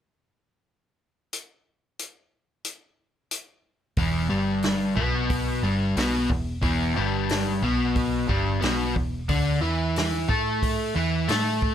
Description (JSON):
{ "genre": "blues rock power trio and southern rock", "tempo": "90 BPM", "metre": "4/4", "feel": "straight", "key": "unclear", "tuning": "A4 = 438 Hz", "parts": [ { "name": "vintage drum kit", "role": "drums", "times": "1.3-11.7 s", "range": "hi-hat, kick drum, snare drum", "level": "-29 LUFS", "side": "equal", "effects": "none" }, { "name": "overdriven semi-hollow guitar", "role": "riff", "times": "4.0-11.7 s", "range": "E2 to A4", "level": "-24 LUFS", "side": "left 1 dB", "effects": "none" }, { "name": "vintage muted picked electric bass", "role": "bass", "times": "4.0-11.7 s", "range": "E1 to A2", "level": "-29 LUFS", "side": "equal", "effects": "none" } ], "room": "light reverb", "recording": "none", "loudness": "-22 LUFS", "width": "side -9 dB against mid", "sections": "1.3-4.0 A section; 4.0-11.7 B section", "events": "none", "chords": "1.3 N.C.; 4.0 E5; 9.3 D5" }